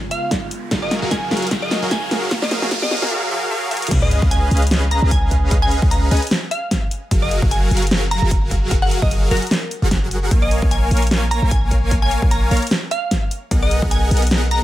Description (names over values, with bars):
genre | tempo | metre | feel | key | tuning
future bass | 150 BPM | 4/4 | swing 55% on 16ths, half-time | F# major | A4 = 439 Hz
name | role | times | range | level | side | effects
airy breathy pad | sustained chords | 0.0-3.1 s | C#3 to A#4 | -33 LUFS | right 2 dB | none
riser and sub drop | sound effects | 0.3-5.5 s | none | -27 LUFS | equal | none
glassy wavetable pluck | melody | 0.1-14.6 s | A#4 to A#5 | -24 LUFS | equal | chorus, sidechain pumping, digital delay
big-room dance drum kit | drums | 0.1-14.6 s | crash cymbal, hi-hat, snare drum | -22 LUFS | equal | none
electronic kick drum | drums | 0.3-13.9 s | none | -19 LUFS | equal | none
supersaw chords | riff | 0.7-14.6 s | F#3 to A#5 | -23 LUFS | equal | cassette tape, sidechain pumping
warm 808-style bass | bass | 0.7-14.6 s | F#1 to C#2 | -19 LUFS | equal | sidechain pumping
room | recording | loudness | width
digital ambience | high-pass filter | -15 LUFS | side -14 dB against mid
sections
0.0-3.9 A section; 3.9-14.6 B section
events
build-up 0.0-3.9; drum fill 0.0-3.1, 3.7; filter sweep 0.0-3.9; riser 0.3-3.1; drop 3.9-14.6; impact 3.9-5.5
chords
0.0 C#7; 0.5 F#maj9; 3.9 C#7; 6.9 F#maj9; 10.3 A#m7; 13.5 G#m9/B